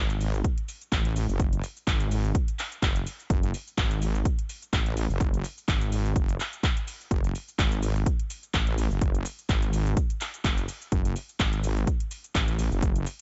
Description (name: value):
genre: bass house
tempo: 126 BPM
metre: 4/4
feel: swing 55% on 16ths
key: F# minor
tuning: A4 = 441 Hz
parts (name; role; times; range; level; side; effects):
- wobble bass; bass; 0.0-13.0 s; F#1 to A1; -30 LUFS; equal; chorus, tube saturation, sidechain pumping
- house drum kit; drums; 0.1-13.2 s; handclaps, hi-hat, shaker; -36 LUFS; equal; none
- electronic kick drum; drums; 0.4-12.9 s; none; -29 LUFS; equal; none
room: digital ambience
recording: nothing above 7.9 kHz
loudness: -28 LUFS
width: mono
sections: 0.0-13.2 A section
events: none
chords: none